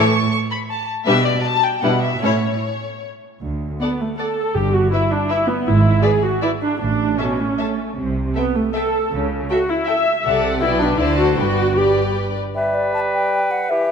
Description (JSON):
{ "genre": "quick classical-period movement for symphony orchestra", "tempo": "149-164 BPM", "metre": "3/4", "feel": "rubato", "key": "G major from 8.0 s", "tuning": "A4 = 442 Hz", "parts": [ { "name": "muted chamber violin section", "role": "melody", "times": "0.0-12.3 s", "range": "C#5 to C#6", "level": "-24 LUFS", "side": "left 4 dB", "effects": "none" }, { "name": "muted chamber violin section", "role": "second line", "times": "0.0-12.4 s", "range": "E4 to E5", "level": "-24 LUFS", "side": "left 4 dB", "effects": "none" }, { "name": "muted chamber viola section", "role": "accompaniment", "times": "0.0-12.2 s", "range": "E3 to E5", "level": "-20 LUFS", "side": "equal", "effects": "none" }, { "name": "muted chamber cello section", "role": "bass", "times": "0.0-12.4 s", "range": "D2 to A3", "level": "-23 LUFS", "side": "right 3 dB", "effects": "none" }, { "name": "muted studio double bass section", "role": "bass", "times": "3.4-12.4 s", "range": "G1 to D2", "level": "-24 LUFS", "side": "right 3 dB", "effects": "none" }, { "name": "timpani", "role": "percussion", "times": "4.5-5.1 s", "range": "G2", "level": "-26 LUFS", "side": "left 1 dB", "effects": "none" }, { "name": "bright clarinet", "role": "second line", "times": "12.6-13.9 s", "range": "G4 to B4", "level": "-24 LUFS", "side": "equal", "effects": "none" }, { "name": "mellow hollow silver concert flute", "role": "second line", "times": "12.6-13.9 s", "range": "D5 to A5", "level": "-20 LUFS", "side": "left 2 dB", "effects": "none" }, { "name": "warm bassoon", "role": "accompaniment", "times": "12.6-13.9 s", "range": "E3 to G3", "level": "-21 LUFS", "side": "right 1 dB", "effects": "none" } ], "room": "moderate scoring stage reverb, RT60 2.1 s", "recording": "none", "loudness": "-16 LUFS", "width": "side -6 dB against mid", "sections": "0.0-3.4 A section; 3.4-12.6 B section; 12.6-13.9 A section", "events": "none", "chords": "0.0 A; 1.1 G/B; 2.2 A; 3.4 D5; 4.6 Em/G; 5.7 E7/G#; 6.8 A; 8.0 Am/C; 9.1 A/C# (rootless); 10.2 D7/C; 10.6 G/B; 11.0 D7; 11.4 G" }